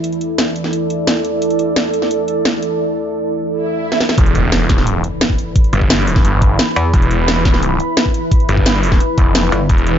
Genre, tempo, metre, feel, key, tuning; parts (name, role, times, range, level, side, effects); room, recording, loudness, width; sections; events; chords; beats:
dark technical drum and bass; 174 BPM; 4/4; straight; E minor; A4 = 440 Hz
deep dark ambient pad; sustained chords; 0.0-10.0 s; E3 to D6; -19 LUFS; right 1 dB; chorus, built-in reverb, sidechain pumping
drum and bass drum kit; drums; 0.0-9.9 s; hi-hat, snare drum; -17 LUFS; equal
swell and impact; sound effects; 3.6-5.6 s; -22 LUFS; right 1 dB
snarling distorted saw bass; bass; 4.2-10.0 s; E1 to G1; -15 LUFS; equal; tube saturation, sidechain pumping
electronic kick drum; drums; 4.2-9.8 s; -13 LUFS; equal
metallic wobble bass; bass; 6.8-6.9, 9.5-9.7 s; G1 to E2; -14 LUFS; equal; chorus
light reverb, digital ambience; nothing above 7.5 kHz; -12 LUFS; side -9 dB against mid
0.0-4.2 A section; 4.2-10.0 B section
swell 3.6-4.2; drum fill 3.9; drop 4.2-10.0; impact 4.2-5.6
0.0 E5
| 0.04 0.38 0.73 1.07 | 1.42 1.76 2.11 2.45 | 2.80 3.14 3.49 3.83 | 4.18 4.52 4.87 5.21 | 5.56 5.90 6.25 6.59 | 6.94 7.28 7.63 7.97 | 8.31 8.66 9.01 9.35 | 9.69